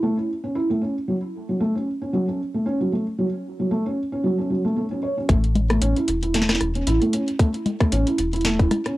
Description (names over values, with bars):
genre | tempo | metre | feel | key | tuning
IDM | 114 BPM | 4/4 | swing 56% on 16ths | A major | A4 = 440 Hz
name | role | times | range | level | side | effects
felt-muted upright piano | arpeggios | 0.0-8.9 s | F#3 to C#5 | -22 LUFS | right 1 dB | cassette tape, analog delay
round analog bass | bass | 5.3-8.7 s | E1 to A1 | -22 LUFS | left 1 dB | none
booming analog drum machine | drums | 5.3-9.0 s | congas, hi-hat, rim click, snare drum | -25 LUFS | left 2 dB | cassette tape
electronic kick drum | drums | 5.3-8.7 s | none | -18 LUFS | left 1 dB | overdrive, cassette tape
room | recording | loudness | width
wet booth ambience, RT60 0.2 s | home recording on cassette | -20 LUFS | side -17 dB against mid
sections
0.0-5.3 A section; 5.3-9.0 B section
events
none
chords
0.0 A; 1.1 F#m; 5.3 A